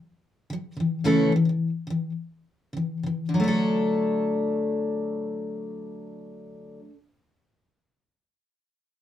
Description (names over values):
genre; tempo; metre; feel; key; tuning
pop; 98-114 BPM; 4/4; straight; D major; A4 = 439 Hz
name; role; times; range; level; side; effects
picked steel-string acoustic guitar; solo; 0.5-7.0 s; C#3 to A4; -24 LUFS; left 1 dB; none
room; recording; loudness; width
moderate small room reverb, RT60 0.5 s; none; -23 LUFS; side -11 dB against mid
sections
0.0-3.3 A section; 3.3-8.2 B section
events
slowing down 0.0-3.3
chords
0.0 D; 0.8 A/C#; 3.3 D